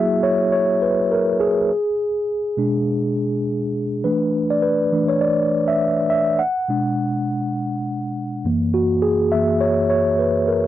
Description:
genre	soul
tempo	102 BPM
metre	4/4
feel	swing 58% on 16ths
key	B dorian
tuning	A4 = 440 Hz
part	mellow tine electric piano	solo	0.0-10.7 s	F#2 to F#5	-17 LUFS	equal	medium stereo tremolo
room	little or no reverb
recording	dry, close 1970s-style studio recording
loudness	-17 LUFS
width	side -13 dB against mid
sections	0.0-10.7 A section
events	tine electric piano solo 0.0-10.7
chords	0.0 F#7; 1.7 Bm6; 4.0 E7sus4; 6.4 Bm6; 8.5 F#7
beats	0.52 1.11 | 1.70 2.29 2.87 3.46 | 4.05 4.63 5.22 5.81 | 6.40 6.99 7.57 8.16 | 8.75 9.34 9.92 10.51

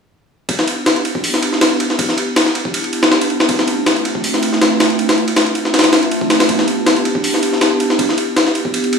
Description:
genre	drum and bass, jungle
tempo	160 BPM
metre	4/4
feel	swing 53% on 16ths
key	E phrygian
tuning	A4 = 444 Hz
part	warbly tape-like pad	sustained chords	0.6-9.0 s	A3 to G4	-18 LUFS	right 1 dB	chorus, built-in reverb, vintage 12-bit sampler grit
part	jungle sampler-style drum kit	drums	0.5-9.0 s	hi-hat, kick drum, ride cymbal, snare drum	-14 LUFS	left 1 dB	overdrive, high-pass filter on cymbals, small room ambience, high-pass filter on kick, high-pass filter on snare, high-pass filter on hats
room	wet echo chamber reverb, RT60 2.2 s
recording	studio reverb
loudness	-13 LUFS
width	side -6 dB against mid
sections	0.5-9.0 A section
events	none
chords	0.5 Em7; 3.5 Dm7; 6.5 Em7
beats	| 0.49 0.86 1.24 1.61 | 1.99 2.36 2.74 3.11 | 3.49 3.86 4.24 4.61 | 4.99 5.36 5.74 6.11 | 6.49 6.86 7.24 7.61 | 7.99 8.36 8.74

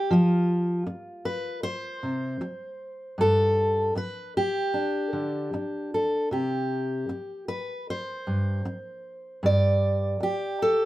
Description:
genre	folk, solo fingerstyle acoustic guitar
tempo	77 BPM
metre	4/4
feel	straight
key	unclear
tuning	A4 = 441 Hz
part	fingerpicked steel-string acoustic guitar	solo	0.0-10.9 s	G2 to D5	-24 LUFS	equal	none
room	moderate studio ambience, RT60 0.5 s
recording	band playing live in one room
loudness	-24 LUFS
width	side -16 dB against mid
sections	0.0-10.9 A section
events	none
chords	0.1 F5; 3.2 Gsus2; 6.3 C5; 9.4 G5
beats	| 0.10 0.86 1.64 2.41 | 3.19 3.96 4.74 5.52 | 6.31 7.09 7.87 8.64 | 9.42 10.20

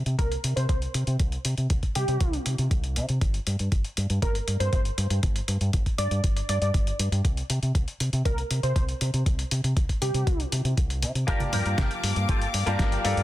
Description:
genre	nu-disco, nu disco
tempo	119 BPM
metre	4/4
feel	straight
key	unclear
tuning	A4 = 440 Hz
part	fingered electric bass with an envelope filter	bass	0.1-13.2 s	G1 to C3	-26 LUFS	equal	none
part	dusty soul sampler-style drum kit	drums	0.1-13.2 s	hi-hat, snare drum	-32 LUFS	left 2 dB	none
part	wide unison lead	melody	0.2-10.4 s	G4 to D5	-32 LUFS	right 1 dB	digital delay
part	electronic kick drum	drums	0.2-12.9 s	none	-25 LUFS	equal	none
part	bright baby grand piano	accompaniment	11.3-13.2 s	Bb3 to A5	-30 LUFS	left 2 dB	digital delay
part	dark studio string section	sustained chords	11.3-13.2 s	Bb3 to D6	-33 LUFS	left 2 dB	sidechain pumping
part	electric guitar with an envelope filter	riff	11.3-13.0 s	F4 to Bb4	-33 LUFS	left 2 dB	ensemble chorus, digital delay
part	congas	percussion	11.4-11.9 s	none	-34 LUFS	right 3 dB	none
room	small room reverb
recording	dense, heavily limited modern master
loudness	-23 LUFS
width	side -15 dB against mid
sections	0.0-13.2 A section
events	none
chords	0.0 C5; 3.2 N.C.; 7.2 C5; 11.3 Gm7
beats	0.19 0.69 | 1.20 1.70 2.21 2.71 | 3.21 3.72 4.22 4.73 | 5.23 5.73 6.24 6.74 | 7.25 7.75 8.26 8.76 | 9.26 9.77 10.27 10.78 | 11.28 11.79 12.29 12.79

